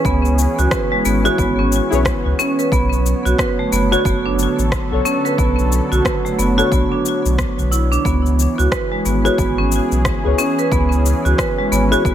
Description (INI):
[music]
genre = organic downtempo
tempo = 90 BPM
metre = 4/4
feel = swing 60% on 16ths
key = unclear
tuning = A4 = 438 Hz
[part]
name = deep mellow chord stab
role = accompaniment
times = 0.0-12.1 s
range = D3 to C#5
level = -24 LUFS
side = left 6 dB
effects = chorus, sidechain pumping, ping-pong delay
[part]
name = warm analog pad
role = sustained chords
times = 0.0-12.1 s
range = D3 to C#5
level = -23 LUFS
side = right 1 dB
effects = chorus, sidechain pumping
[part]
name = marimba with hard mallets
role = arpeggios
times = 0.0-12.1 s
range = G#3 to B4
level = -18 LUFS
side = right 2 dB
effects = ping-pong delay
[part]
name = warm sub bass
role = bass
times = 0.0-12.1 s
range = F#1 to C#2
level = -18 LUFS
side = equal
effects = none
[part]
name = electronic kick drum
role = drums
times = 0.0-12.1 s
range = none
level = -22 LUFS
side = equal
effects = overdrive, studio reverb
[part]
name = electronic cabasa and rim click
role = drums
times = 0.1-12.1 s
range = none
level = -25 LUFS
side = left 2 dB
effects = overdrive, studio reverb
[sound]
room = light reverb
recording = none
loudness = -14 LUFS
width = side -10 dB against mid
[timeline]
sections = 0.0-12.1 A section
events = none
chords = 0.0 C#m7; 2.7 Bm9; 8.1 C#m7